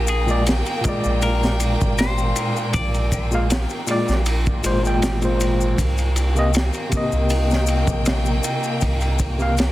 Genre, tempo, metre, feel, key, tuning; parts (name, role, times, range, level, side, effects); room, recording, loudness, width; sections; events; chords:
trip hop; 79 BPM; 4/4; straight; A4 = 440 Hz
semi-hollow electric guitar; melody; 0.0-5.0 s; Ab4 to D5; -30 LUFS; left 3 dB; dub echo
rich studio violin section; sustained chords; 0.0-9.7 s; Bb3 to G5; -28 LUFS; equal
soft dub sub bass; bass; 0.0-9.7 s; Ab1 to C2; -21 LUFS; equal
crunchy breakbeat drum kit; drums; 0.1-9.7 s; kick drum, ride cymbal, snare drum; -24 LUFS; equal
maracas; percussion; 0.1-9.7 s; -31 LUFS; left 8 dB
overdriven tine electric piano; accompaniment; 0.3-9.5 s; Bb2 to G5; -23 LUFS; left 1 dB; medium tremolo, harmonic tremolo, tape echo
small room ambience; dense, heavily limited modern master; -18 LUFS; side -15 dB against mid
0.0-9.7 A section
0.0 Bb7; 5.8 Cm7